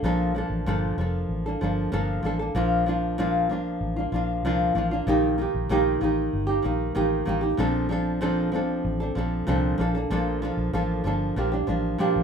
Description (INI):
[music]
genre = pop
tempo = 95 BPM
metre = 4/4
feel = straight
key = Bb major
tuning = A4 = 439 Hz
[part]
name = nylon-string guitar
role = accompaniment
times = 0.0-12.2 s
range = Bb2 to A4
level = -24 LUFS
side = equal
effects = none
[part]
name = vintage muted fingered electric bass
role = bass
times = 0.0-12.2 s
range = F1 to C2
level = -29 LUFS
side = left 1 dB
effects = none
[sound]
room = light reverb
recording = minimal, uncompressed stereo recording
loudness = -23 LUFS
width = side -6 dB against mid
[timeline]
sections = 0.0-12.2 A section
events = none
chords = 0.0 Dm; 2.6 Bb; 5.1 Eb; 7.6 F6/Bb; 9.8 Bb6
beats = | 0.03 0.66 1.29 1.92 | 2.55 3.18 3.81 4.44 | 5.07 5.70 6.33 6.96 | 7.59 8.22 8.85 9.48 | 10.11 10.74 11.37 12.00